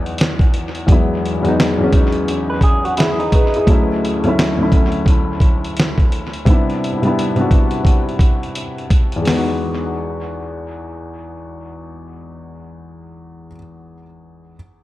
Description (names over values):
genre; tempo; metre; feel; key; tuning
lo-fi hip hop; 86 BPM; 4/4; swing 61% on 16ths; E major; A4 = 440 Hz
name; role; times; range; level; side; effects
felt-muted upright piano; accompaniment; 0.0-14.6 s; D2 to B4; -19 LUFS; left 1 dB; dub echo
dusty soul sampler-style drum kit; drums; 0.1-9.5 s; hi-hat, kick drum, snare drum; -15 LUFS; equal; none
electric guitar through a small old amp; second line; 2.5-3.7 s; D#4 to B4; -23 LUFS; right 2 dB; dub echo
room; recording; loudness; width
light reverb, digital ambience; echo-heavy mix; -13 LUFS; side -16 dB against mid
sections
0.0-9.3 A section; 9.3-12.0 B section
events
none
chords
0.0 Emaj9; 3.7 Dmaj9; 6.5 Cmaj9; 9.3 Emaj9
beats
0.18 | 0.88 1.58 2.28 2.97 | 3.67 4.37 5.07 5.76 | 6.46 7.16 7.86 8.56 | 9.25 9.95 10.65 11.35